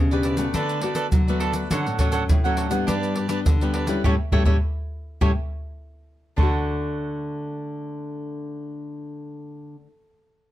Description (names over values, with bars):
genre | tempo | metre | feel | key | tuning
samba and choro | 103 BPM | 4/4 | straight | D major | A4 = 441 Hz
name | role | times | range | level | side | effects
nylon-string guitar | accompaniment | 0.0-9.9 s | G2 to B4 | -28 LUFS | left 4 dB | none
nylon-string guitar | bass | 0.0-9.8 s | G2 to F#3 | -29 LUFS | equal | none
cavaquinho | accompaniment | 0.1-9.9 s | D4 to F#5 | -29 LUFS | right 5 dB | none
egg shaker, pandeiro and surdo | percussion | 0.1-6.5 s | none | -22 LUFS | equal | none
room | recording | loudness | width
little or no reverb | close, detailed microphones | -21 LUFS | side -13 dB against mid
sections
0.0-6.4 A section; 6.4-8.7 B section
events
band accent 4.0-6.4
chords
0.0 Em7; 0.5 Bm7/D; 1.7 Dmaj7; 2.9 G; 4.0 A7; 6.4 Dmaj7